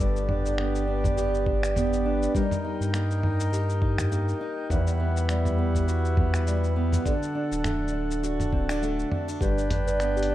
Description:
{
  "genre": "folktronica",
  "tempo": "102 BPM",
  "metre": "4/4",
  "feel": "swing 56% on 16ths",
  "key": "G major",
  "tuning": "A4 = 441 Hz",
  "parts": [
    { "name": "hand-pumped harmonium", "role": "sustained chords", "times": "0.0-10.3 s", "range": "G3 to G5", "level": "-33 LUFS", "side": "right 1 dB", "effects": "none" },
    { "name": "fingerpicked steel-string acoustic guitar", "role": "arpeggios", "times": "0.0-10.3 s", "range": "E2 to G4", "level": "-28 LUFS", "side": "right 1 dB", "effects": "ping-pong delay" },
    { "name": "warm sub bass", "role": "bass", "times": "0.0-10.3 s", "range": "D1 to G2", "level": "-26 LUFS", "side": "equal", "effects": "none" },
    { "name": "lo-fi sampler-style drum kit", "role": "drums", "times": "0.0-10.3 s", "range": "cabasa, finger snaps, hi-hat, toms", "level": "-32 LUFS", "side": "equal", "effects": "none" },
    { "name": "electronic kick drum", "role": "drums", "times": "1.0-9.5 s", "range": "none", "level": "-27 LUFS", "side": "equal", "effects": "none" },
    { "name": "small celesta", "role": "second line", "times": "9.4-10.3 s", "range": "G4 to B4", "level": "-34 LUFS", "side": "left 1 dB", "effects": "tape echo" }
  ],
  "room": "light reverb, digital ambience",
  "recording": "rough home demo mix",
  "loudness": "-23 LUFS",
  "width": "side -14 dB against mid",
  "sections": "0.0-10.3 A section",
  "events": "none",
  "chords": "0.0 G; 2.3 Eb/G; 4.7 Emadd9; 7.1 D; 9.4 G",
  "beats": "| 0.00 0.58 1.17 1.76 | 2.35 2.94 3.53 4.11 | 4.70 5.29 5.88 6.47 | 7.05 7.64 8.23 8.82 | 9.41 10.00"
}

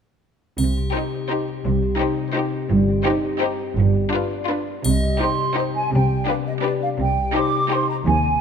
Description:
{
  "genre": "cinematic, playful, whimsical film cue",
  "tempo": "169 BPM",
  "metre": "3/4",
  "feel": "straight",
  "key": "C minor",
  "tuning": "A4 = 440 Hz",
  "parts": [
    { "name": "concert harp", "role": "arpeggios", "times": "0.6-8.4 s", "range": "G2 to Eb5", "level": "-26 LUFS", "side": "left 7 dB", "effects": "none" },
    { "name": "clear studio cello section", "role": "bass", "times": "0.6-8.3 s", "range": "Eb2 to C3", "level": "-23 LUFS", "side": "right 2 dB", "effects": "none" },
    { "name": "clear symphonic double bass section", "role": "bass", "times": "0.6-8.3 s", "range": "G1 to Eb2", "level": "-23 LUFS", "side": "right 3 dB", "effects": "none" },
    { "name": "triangle", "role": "percussion", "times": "0.6-1.3, 4.8-5.5 s", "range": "none", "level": "-33 LUFS", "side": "left 3 dB", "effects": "none" },
    { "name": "rich studio violin section", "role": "melody", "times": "0.9-8.0 s", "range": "B4 to C5", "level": "-30 LUFS", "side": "left 5 dB", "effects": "none" },
    { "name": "rich studio violin section", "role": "second line", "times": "0.9-8.0 s", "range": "F4 to G4", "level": "-28 LUFS", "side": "left 4 dB", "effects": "none" },
    { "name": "clear studio viola section", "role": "accompaniment", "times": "0.9-8.0 s", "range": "D4 to Eb4", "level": "-27 LUFS", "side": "right 1 dB", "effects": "none" },
    { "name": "mellow hollow small flute group", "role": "second line", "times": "4.9-8.4 s", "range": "D5 to D6", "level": "-23 LUFS", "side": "right 3 dB", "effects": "none" }
  ],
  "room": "moderate scoring stage reverb, RT60 2.1 s",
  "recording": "none",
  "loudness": "-19 LUFS",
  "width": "side -7 dB against mid",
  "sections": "0.6-4.9 A section; 4.9-8.4 B section",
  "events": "none",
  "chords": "0.6 Cm; 2.7 Cm/G; 3.8 G7; 4.9 Cm; 5.9 G/C; 7.0 Cm",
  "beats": "| 0.58 0.94 1.29 | 1.64 2.00 2.35 | 2.70 3.06 3.41 | 3.77 4.12 4.49 | 4.85 5.21 5.57 | 5.92 6.28 6.64 | 6.99 7.35 7.70 | 8.06"
}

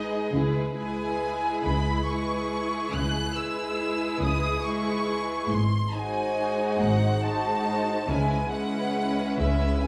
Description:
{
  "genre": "classical",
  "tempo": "46 BPM (dotted quarters)",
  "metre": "12/8",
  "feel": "rubato",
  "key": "unclear",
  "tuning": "A4 = 444 Hz",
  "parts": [
    { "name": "rich studio violin section", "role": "melody", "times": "0.0-9.9 s", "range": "D#5 to F#6", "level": "-33 LUFS", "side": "equal", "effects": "none" },
    { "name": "rich studio violin section", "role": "second line", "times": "0.0-9.8 s", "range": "E4 to B#4", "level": "-35 LUFS", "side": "equal", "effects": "none" },
    { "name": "rich studio viola section", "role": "accompaniment", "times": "0.0-9.9 s", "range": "G#3 to E4", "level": "-32 LUFS", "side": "equal", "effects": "none" },
    { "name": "rich studio double bass section", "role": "bass", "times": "0.0-9.9 s", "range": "G#1 to C#2", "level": "-33 LUFS", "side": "equal", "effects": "none" },
    { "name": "rich symphonic cello section", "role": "bass", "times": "0.0-9.9 s", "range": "G#2 to C#3", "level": "-34 LUFS", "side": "equal", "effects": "none" }
  ],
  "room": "wet recital hall reverb, RT60 1.4 s",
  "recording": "recorded in a church or concert hall",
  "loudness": "-27 LUFS",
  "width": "mono",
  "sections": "0.0-9.9 A section",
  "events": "none",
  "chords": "0.3 C#m7; 5.5 G#7; 8.1 C#m7",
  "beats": "| 0.34 1.64 2.93 4.21 | 5.50 6.80 8.09 9.40"
}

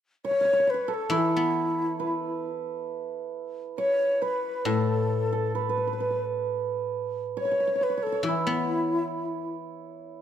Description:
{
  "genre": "chinese traditional, Chinese chamber ensemble",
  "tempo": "68 BPM",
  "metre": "2/4",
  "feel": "rubato",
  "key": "A gong mode",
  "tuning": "A4 = 440 Hz",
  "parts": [
    { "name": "hammered dulcimer", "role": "second line", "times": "0.2-10.2 s", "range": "E4 to C#5", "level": "-30 LUFS", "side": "right 7 dB", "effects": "none" },
    { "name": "breathy low xiao", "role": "melody", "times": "0.3-9.6 s", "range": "E4 to C#5", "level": "-26 LUFS", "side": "left 2 dB", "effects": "none" },
    { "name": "guzheng", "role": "accompaniment", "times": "1.1-10.2 s", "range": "A2 to B3", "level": "-30 LUFS", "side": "left 4 dB", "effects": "none" }
  ],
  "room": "moderate recital hall reverb, RT60 1.7 s",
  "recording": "none",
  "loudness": "-25 LUFS",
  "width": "side -9 dB against mid",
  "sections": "0.0-10.2 A section",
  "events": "none",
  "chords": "none",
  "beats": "0.25 | 1.14 2.03 | 2.91 3.79 | 4.67 5.56 | 6.46 7.36 | 8.25 9.13 | 10.00"
}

